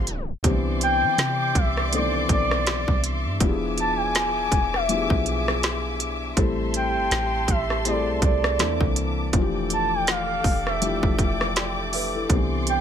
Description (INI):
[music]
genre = contemporary R&B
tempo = 81 BPM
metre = 4/4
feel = swing 58% on 16ths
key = C major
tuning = A4 = 442 Hz
[part]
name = felt-muted upright piano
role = accompaniment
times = 0.0-12.8 s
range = D3 to G5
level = -28 LUFS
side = left 4 dB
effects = none
[part]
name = muted studio string section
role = sustained chords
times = 0.0-12.8 s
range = F3 to D6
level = -30 LUFS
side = left 1 dB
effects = sidechain pumping
[part]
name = soft 808-style bass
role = bass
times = 0.0-12.8 s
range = E1 to E3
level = -28 LUFS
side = right 1 dB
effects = none
[part]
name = trap drum kit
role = drums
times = 0.1-12.8 s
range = hi-hat, kick drum, rim click, snare drum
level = -24 LUFS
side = right 1 dB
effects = none
[part]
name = gliding portamento lead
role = melody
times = 0.8-12.8 s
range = D5 to A5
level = -26 LUFS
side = equal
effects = chorus, phaser, digital delay
[sound]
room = digital ambience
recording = tape stop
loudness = -20 LUFS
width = side -8 dB against mid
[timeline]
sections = 0.4-12.8 A section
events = tape stop 0.1-0.4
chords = 0.4 Cmaj9; 3.4 E7b9; 6.4 Am7; 8.6 C13; 9.3 Fmaj13; 12.3 Cmaj9